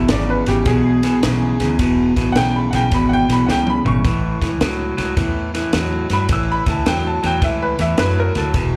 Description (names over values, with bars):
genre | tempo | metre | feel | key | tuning
electric blues shuffle | 107 BPM | 4/4 | swing 66% on 8ths | unclear | A4 = 440 Hz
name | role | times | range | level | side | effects
bright upright piano | second line | 0.0-8.6 s | G4 to E6 | -24 LUFS | equal | none
electric guitar at the edge of break-up | riff | 0.0-8.8 s | E2 to F#3 | -21 LUFS | equal | none
vintage muted fingered electric bass | bass | 0.0-8.8 s | E1 to G2 | -24 LUFS | equal | none
compact cocktail drum kit | drums | 0.1-8.7 s | kick drum, ride cymbal, snare drum, toms | -24 LUFS | equal | none
room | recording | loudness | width
light reverb | live gig heard through the venue's PA, club ambience | -18 LUFS | mono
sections
0.0-8.8 A section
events
upright piano solo 0.0-8.8; drum fill 3.5-4.0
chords
0.0 E; 4.0 A